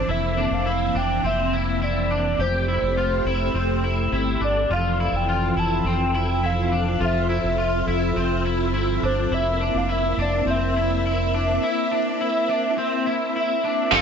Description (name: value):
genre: dream pop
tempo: 104 BPM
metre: 4/4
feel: straight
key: unclear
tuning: A4 = 441 Hz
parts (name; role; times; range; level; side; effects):
- hollow clarinet-like synth lead; melody; 0.0-14.0 s; C5 to A5; -25 LUFS; equal; chorus, digital delay
- string machine, violins; sustained chords; 0.0-14.0 s; E3 to A4; -26 LUFS; equal; ensemble chorus
- electric guitar at the edge of break-up; arpeggios; 0.0-14.0 s; C4 to G4; -27 LUFS; left 2 dB; ensemble chorus, digital delay
- fingered electric bass; bass; 0.0-14.0 s; F1 to G1; -25 LUFS; equal; none
- overdriven electric guitar; accompaniment; 13.9-14.0 s; F3 to A4; -14 LUFS; right 3 dB; tremolo, analog chorus
room: moderate huge ambient reverb, RT60 4.1 s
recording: dark, warm production, nothing above 8.0 kHz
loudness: -20 LUFS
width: side -7 dB against mid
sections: 0.0-13.9 A section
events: none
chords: 0.1 C7/F; 2.4 Am7/F; 9.3 C7/F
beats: | 0.09 0.66 1.24 1.82 | 2.39 2.97 3.55 4.12 | 4.70 5.28 5.86 6.43 | 7.01 7.59 8.16 8.74 | 9.32 9.89 10.47 11.05 | 11.62 12.20 12.78 13.36 | 13.93